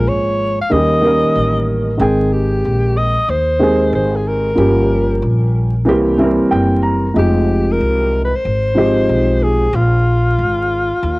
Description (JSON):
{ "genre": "hip hop, jazz-hop", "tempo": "93 BPM", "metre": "4/4", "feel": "swing 65% on 16ths", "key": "Ab major", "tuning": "A4 = 440 Hz", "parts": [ { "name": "mellow alto saxophone", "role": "melody", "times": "0.0-11.2 s", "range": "F4 to F5", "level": "-18 LUFS", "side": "left 1 dB", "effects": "tape echo" }, { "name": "dark upright piano", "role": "accompaniment", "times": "0.0-9.6 s", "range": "Eb3 to Bb5", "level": "-15 LUFS", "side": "right 1 dB", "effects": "cassette tape" }, { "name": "upright bass", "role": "bass", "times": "0.0-11.2 s", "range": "F1 to Eb2", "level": "-17 LUFS", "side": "equal", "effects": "none" } ], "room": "moderate small room reverb, RT60 0.5 s", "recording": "home recording on cassette, vinyl crackle", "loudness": "-12 LUFS", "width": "side -22 dB against mid", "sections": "0.0-11.2 A section", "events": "upright piano fill 5.9-7.2", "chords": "0.0 Bbm7; 0.7 Eb7; 2.0 Abmaj7; 4.6 Gm7b5; 5.9 C7; 7.2 Fm9; 9.7 Bb5" }